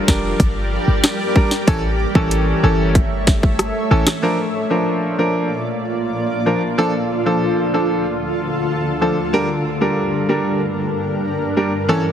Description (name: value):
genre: dancehall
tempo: 94 BPM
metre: 4/4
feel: straight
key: unclear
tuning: A4 = 439 Hz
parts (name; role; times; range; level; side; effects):
- bright grand piano; accompaniment; 0.0-12.0 s; E3 to Bb4; -19 LUFS; equal; none
- granular cloud pad; sustained chords; 0.0-12.1 s; D2 to E5; -21 LUFS; equal; built-in reverb, sidechain pumping
- clean 808-style bass; bass; 0.1-4.0 s; F1 to A1; -19 LUFS; equal; none
- island pop drum kit; drums; 0.1-4.2 s; hi-hat, kick drum, rim click, snare drum; -16 LUFS; equal; overdrive
room: light reverb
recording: heavily compressed radio sound, multiband compression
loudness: -16 LUFS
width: side -9 dB against mid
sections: 0.0-4.2 A section; 4.2-12.1 B section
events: none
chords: 0.0 Gm; 1.7 A; 4.2 Bb; 6.8 Dm; 9.3 Gm